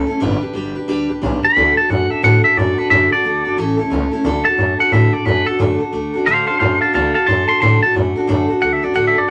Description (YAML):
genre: rockabilly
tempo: 178 BPM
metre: 4/4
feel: swing 63% on 8ths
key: D mixolydian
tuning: A4 = 440 Hz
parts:
  - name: picked steel-string acoustic guitar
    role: accompaniment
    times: 0.0-9.3 s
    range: A2 to B4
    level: -20 LUFS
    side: equal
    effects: none
  - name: upright bass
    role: bass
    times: 0.0-9.3 s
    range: G1 to A2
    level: -22 LUFS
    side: equal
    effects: none
  - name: twangy electric guitar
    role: melody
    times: 1.4-9.3 s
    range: A4 to C6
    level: -17 LUFS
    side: equal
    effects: none
room: light reverb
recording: none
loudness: -16 LUFS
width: mono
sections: 0.0-4.2 A section; 4.2-9.3 B section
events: clean electric guitar solo 4.2-9.3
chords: 0.2 G; 1.6 D; 3.6 A; 4.2 D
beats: | 0.21 0.55 0.88 1.22 | 1.56 1.89 2.23 2.57 | 2.90 3.24 3.58 3.91 | 4.25 4.58 4.92 5.26 | 5.59 5.93 6.26 6.60 | 6.94 7.27 7.61 7.95 | 8.28 8.62 8.96 9.29